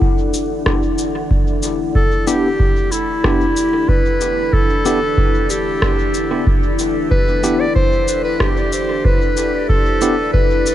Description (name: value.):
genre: ambient dub.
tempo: 93 BPM.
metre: 4/4.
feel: straight.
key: E minor.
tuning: A4 = 441 Hz.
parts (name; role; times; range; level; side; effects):
deep dark ambient pad; sustained chords; 0.0-10.7 s; D4 to F#5; -21 LUFS; left 1 dB; chorus, built-in reverb.
electronic kick drum; drums; 0.0-10.5 s; none; -18 LUFS; equal; none.
electronic cabasa and rim click; drums; 0.3-10.7 s; none; -23 LUFS; equal; dub echo.
warm clarinet; melody; 2.0-10.7 s; E4 to D5; -18 LUFS; equal; dub echo.
bright tine electric piano; stabs; 2.3-10.1 s; B3 to G4; -24 LUFS; equal; medium stereo tremolo, dub echo.
room: light reverb.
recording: none.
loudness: -14 LUFS.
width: side -12 dB against mid.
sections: 0.0-10.7 A section.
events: none.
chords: 0.0 Em7.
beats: 0.02 0.66 1.31 | 1.95 2.60 3.24 3.89 | 4.53 5.18 5.82 6.47 | 7.12 7.76 8.40 9.05 | 9.70 10.34.